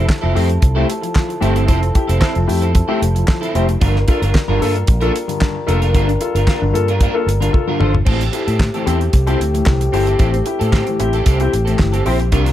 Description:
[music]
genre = disco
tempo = 113 BPM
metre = 4/4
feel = straight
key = unclear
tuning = A4 = 440 Hz
[part]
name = electric guitar at the edge of break-up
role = accompaniment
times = 0.0-12.5 s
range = C4 to C5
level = -23 LUFS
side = right 3 dB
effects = ensemble chorus
[part]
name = mellow French horn section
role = sustained chords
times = 0.0-12.5 s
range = C3 to Bb4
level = -24 LUFS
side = left 1 dB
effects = none
[part]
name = fingered electric bass with an envelope filter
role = bass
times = 0.0-12.5 s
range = F1 to A2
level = -17 LUFS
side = equal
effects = none
[part]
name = clear concert grand piano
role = accompaniment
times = 0.1-12.5 s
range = G2 to A4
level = -22 LUFS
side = left 6 dB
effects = none
[part]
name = damped 70s drum kit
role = drums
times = 0.1-12.5 s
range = crash cymbal, handclaps, hi-hat, kick drum, snare drum, toms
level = -17 LUFS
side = equal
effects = none
[sound]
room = little or no reverb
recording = none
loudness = -13 LUFS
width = side -12 dB against mid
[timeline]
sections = 0.0-8.1 A section; 8.1-12.5 B section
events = drum fill 7.5-8.1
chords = 0.0 Fmaj7; 3.8 Gm7; 8.1 Am7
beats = 0.09 0.62 1.16 | 1.69 2.22 2.75 3.28 | 3.81 4.34 4.88 5.41 | 5.94 6.47 7.00 7.54 | 8.07 8.60 9.13 9.66 | 10.20 10.73 11.26 11.79 | 12.32

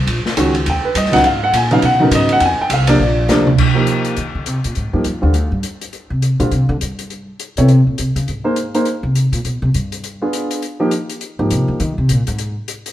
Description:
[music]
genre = jazz piano trio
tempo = 204 BPM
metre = 4/4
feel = swing 61% on 8ths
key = C minor from 3.6 s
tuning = A4 = 442 Hz
[part]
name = upright bass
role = bass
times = 0.0-12.5 s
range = Bb1 to Eb3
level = -16 LUFS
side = equal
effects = none
[part]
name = open jazz drum kit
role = drums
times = 0.1-12.9 s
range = crash cymbal, hi-hat, kick drum, ride cymbal, snare drum, toms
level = -21 LUFS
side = right 1 dB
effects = none
[part]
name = warm concert grand piano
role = melody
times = 0.4-11.8 s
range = C3 to Ab5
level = -16 LUFS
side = equal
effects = none
[sound]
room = wet stone room reverb, RT60 1.3 s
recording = band playing live in one room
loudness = -14 LUFS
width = side -12 dB against mid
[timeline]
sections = 0.0-3.6 A section; 3.6-12.9 A section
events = grand piano solo 0.0-3.6; drum fill 3.3; upright bass solo 3.6-12.9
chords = 0.1 Bbmadd11; 0.7 Eb7alt; 1.2 Abm9; 2.4 F5; 3.0 Bbadd9; 3.6 Cm7; 4.8 Fm7; 5.3 Dsus4; 5.9 Gsus4; 7.1 N.C.; 8.3 Ab; 9.5 G7b9; 10.6 Cm7; 11.8 Abadd9; 12.4 N.C.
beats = | 0.07 0.36 0.66 0.95 | 1.24 1.53 1.83 2.12 | 2.41 2.71 3.00 3.29 | 3.58 3.88 4.17 4.46 | 4.76 5.05 5.34 5.64 | 5.93 6.22 6.52 6.81 | 7.10 7.40 7.69 7.98 | 8.28 8.57 8.86 9.16 | 9.45 9.74 10.04 10.33 | 10.62 10.92 11.21 11.51 | 11.80 12.09 12.39 12.68

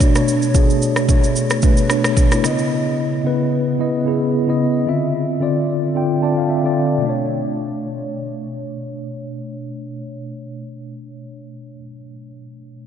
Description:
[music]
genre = amapiano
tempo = 111 BPM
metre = 4/4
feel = swing 55% on 16ths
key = B dorian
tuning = A4 = 440 Hz
[part]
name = mellow tine electric piano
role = accompaniment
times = 0.0-12.9 s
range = B2 to A5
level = -18 LUFS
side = equal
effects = medium stereo tremolo, low-pass filter
[part]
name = afro-pop drum kit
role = drums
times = 0.0-2.7 s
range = kick drum, rim click, shaker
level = -17 LUFS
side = equal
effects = none
[sound]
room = wet huge ambient reverb, RT60 3.7 s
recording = dreamy mix soaked in reverb, nothing above 10.4 kHz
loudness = -16 LUFS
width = side -8 dB against mid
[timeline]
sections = 0.0-7.0 A section; 7.0-11.4 B section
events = tine electric piano fill 6.0-7.0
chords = 0.0 Bm9; 2.4 C#m9; 4.9 Dm9; 7.0 Bm9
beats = 0.01 | 0.55 1.09 1.63 2.17 | 2.71 3.25 3.79 4.33 | 4.87 5.41 5.95 6.49 | 7.03 7.57 8.11 8.65 | 9.19 9.73 10.28 10.82

